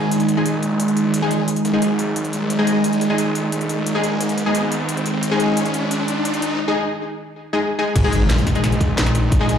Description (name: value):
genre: dark technical drum and bass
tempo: 176 BPM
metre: 4/4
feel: straight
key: unclear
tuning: A4 = 440 Hz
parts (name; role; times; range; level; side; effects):
- sweeping resonant pad; sustained chords; 0.0-9.6 s; D#3 to D#4; -22 LUFS; right 2 dB; chorus, sidechain pumping
- orchestra-hit-like synth stab; stabs; 0.0-9.5 s; G#3 to G#4; -22 LUFS; left 2 dB; built-in reverb, tape echo
- snarling distorted saw bass; bass; 0.0-9.6 s; F#1 to A#1; -24 LUFS; equal; distortion, tube saturation, high-pass filter
- riser and impact; sound effects; 0.7-9.3 s; none; -26 LUFS; equal; none
- drum and bass drum kit; drums; 0.1-9.6 s; crash cymbal, hi-hat, snare drum; -27 LUFS; left 1 dB; none
- crunchy breakbeat drum kit; drums; 8.0-9.6 s; ride cymbal, snare drum; -33 LUFS; right 1 dB; none
- electronic kick drum; drums; 8.0-9.4 s; none; -18 LUFS; equal; none
room: wet digital room reverb, RT60 0.9 s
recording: played on a big sound system in a bare room, large studio reverb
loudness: -17 LUFS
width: side -8 dB against mid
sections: 0.0-8.0 A section; 8.0-9.6 B section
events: build-up 0.0-8.0; riser 0.7-6.6; break 6.6-8.0; drop 8.0-9.6; impact 8.0-9.3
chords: 0.0 G#5